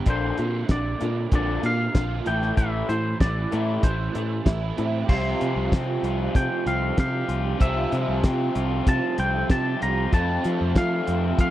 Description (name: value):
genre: indie rock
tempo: 95 BPM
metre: 4/4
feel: straight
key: unclear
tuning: A4 = 440 Hz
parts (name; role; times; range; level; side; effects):
- crunchy overdriven guitar; riff; 0.0-11.5 s; F2 to F4; -29 LUFS; right 7 dB; ensemble chorus
- raw garage guitar; riff; 0.0-11.5 s; F2 to G4; -30 LUFS; left 6 dB; overdrive
- twangy electric guitar; melody; 0.1-11.5 s; C5 to Bb5; -29 LUFS; left 1 dB; none
- picked electric bass; bass; 0.1-11.5 s; A1 to F3; -26 LUFS; equal; none
- cloth-damped thuddy drum kit; drums; 0.1-11.5 s; crash cymbal, hi-hat, kick drum, snare drum; -21 LUFS; equal; none
room: studio reverb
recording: dry, close 1970s-style studio recording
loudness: -21 LUFS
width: side -13 dB against mid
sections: 0.0-5.1 A section; 5.1-11.5 B section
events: none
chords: 0.1 Bbadd9; 2.3 Am; 5.1 Csus4; 10.1 F